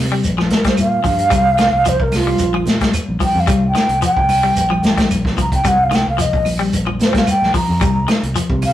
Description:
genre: afrobeat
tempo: 111 BPM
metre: 4/4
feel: straight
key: C minor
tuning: A4 = 439 Hz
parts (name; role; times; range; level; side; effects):
- fingered electric bass; bass; 0.0-8.7 s; A1 to C3; -21 LUFS; equal; none
- clean electric guitar; arpeggios; 0.1-8.5 s; Eb3 to G3; -21 LUFS; left 4 dB; none
- vintage drum kit; drums; 0.2-8.7 s; hi-hat, kick drum, snare drum; -19 LUFS; equal; none
- shekere; percussion; 0.2-8.7 s; none; -27 LUFS; equal; none
- claves; percussion; 0.4-8.7 s; none; -32 LUFS; right 2 dB; none
- congas; percussion; 0.4-8.7 s; none; -25 LUFS; equal; none
- mellow hollow concert flute; melody; 0.5-8.7 s; F4 to Bb5; -16 LUFS; right 1 dB; none
room: wet studio reverb, RT60 0.6 s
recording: rough rehearsal-room recording, warm saturation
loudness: -13 LUFS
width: side -12 dB against mid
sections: 0.0-8.7 A section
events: flute solo 0.0-8.7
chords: 0.2 Bb5; 1.3 Cm; 2.4 Bb5; 3.5 Cm; 4.6 Bb5; 5.7 Cm7; 6.7 Bb5; 7.8 Cm

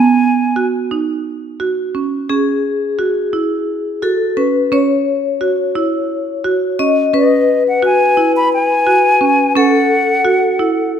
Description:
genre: contemporary instrumental, chamber music in an uneven meter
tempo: 173 BPM (eighths)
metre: 7/8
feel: straight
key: unclear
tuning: A4 = 440 Hz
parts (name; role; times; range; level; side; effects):
- hollow concert flute; melody; 0.0-0.7, 7.2-10.9 s; D#5 to B5; -14 LUFS; left 1 dB; none
- marimba with hard mallets; arpeggios; 0.0-11.0 s; B3 to F#4; -16 LUFS; right 5 dB; none
- vibraphone with medium mallets; second line; 2.3-11.0 s; G#4 to D#5; -16 LUFS; left 7 dB; none
room: moderate concert hall reverb, RT60 2.0 s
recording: none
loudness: -12 LUFS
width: side -8 dB against mid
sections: 0.0-11.0 A section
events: none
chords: 0.0 G#m7; 2.3 C#m11

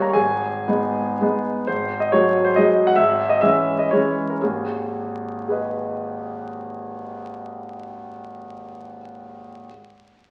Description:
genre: classical, romantic triple-time dance for piano with dotted rhythms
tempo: 108-152 BPM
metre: 3/4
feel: rubato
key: G# minor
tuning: A4 = 440 Hz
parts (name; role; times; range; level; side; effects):
- clear concert grand piano; solo; 0.0-9.7 s; G#1 to C#6; -22 LUFS; equal; none
room: wet stone room reverb, RT60 1.2 s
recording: very old 78 rpm record, vinyl crackle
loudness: -21 LUFS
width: mono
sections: 0.0-1.7 A section; 1.7-4.4 B section; 4.4-7.5 C section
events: none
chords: 0.2 G#m; 1.7 G#5; 3.0 C#m/G#; 4.4 G#m

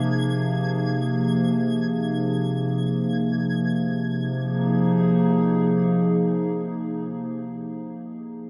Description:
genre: ambient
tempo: free time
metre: none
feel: none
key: F minor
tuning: A4 = 439 Hz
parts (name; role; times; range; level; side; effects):
- warbly tape-like pad; sustained chords; 0.0-7.6 s; C3 to Ab4; -24 LUFS; equal; chorus, built-in reverb
- twinkling granular texture; texture; 0.0-3.7 s; Ab6; -40 LUFS; equal; built-in reverb
room: wet huge ambient reverb, RT60 7.8 s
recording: dark, warm production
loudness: -23 LUFS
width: mono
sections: 0.0-3.7 A section; 3.7-6.8 B section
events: none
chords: 0.0 Fm

